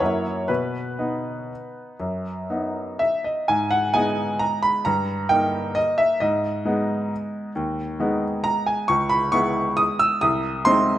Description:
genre	classical, piano waltz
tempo	116-140 BPM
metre	3/4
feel	rubato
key	B major, G# minor from 3.5 s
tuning	A4 = 440 Hz
part	bright baby grand piano	solo	0.0-11.0 s	B#1 to E6	-20 LUFS	equal	none
room	moderate recital hall reverb, RT60 1.8 s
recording	none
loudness	-20 LUFS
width	side -13 dB against mid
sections	0.0-3.5 A section; 3.5-11.0 B section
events	none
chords	0.0 F#7; 0.5 B; 3.5 G#m; 4.9 D#/G; 6.2 G#m; 8.9 C#m7; 10.2 G#/B#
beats	0.00 | 0.49 0.99 1.50 | 2.00 2.50 3.00 | 3.49 3.94 4.41 | 4.86 5.30 5.76 | 6.21 6.66 7.11 | 7.55 8.00 8.45 | 8.89 9.33 9.78 | 10.22 10.66

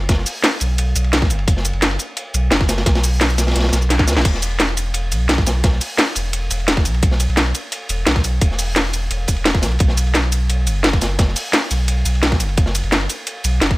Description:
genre	liquid drum and bass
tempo	173 BPM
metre	4/4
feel	straight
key	unclear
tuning	A4 = 441 Hz
part	saturated sub bass	bass	0.0-13.8 s	E1 to D#2	-19 LUFS	equal	none
part	crunchy breakbeat drum kit	drums	0.1-13.7 s	hi-hat, ride cymbal, snare drum	-24 LUFS	equal	high-pass filter on cymbals, high-pass filter on hats, high-pass filter on snare, high-pass filter on room
part	drum and bass drum kit	drums	0.1-13.7 s	cabasa, crash cymbal, hi-hat, ride cymbal, snare drum	-19 LUFS	equal	none
part	electronic kick drum	drums	0.1-13.8 s	none	-16 LUFS	equal	none
room	little or no reverb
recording	none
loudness	-15 LUFS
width	side -21 dB against mid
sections	0.0-13.8 A section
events	drum fill 3.9-4.3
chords	none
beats	| 0.09 0.44 0.78 1.13 | 1.48 1.82 2.17 2.52 | 2.87 3.21 3.56 3.90 | 4.25 4.60 4.95 5.29 | 5.64 5.99 6.33 6.68 | 7.03 7.37 7.72 8.07 | 8.41 8.76 9.11 9.46 | 9.80 10.15 10.49 10.84 | 11.19 11.54 11.88 12.23 | 12.58 12.92 13.27 13.62

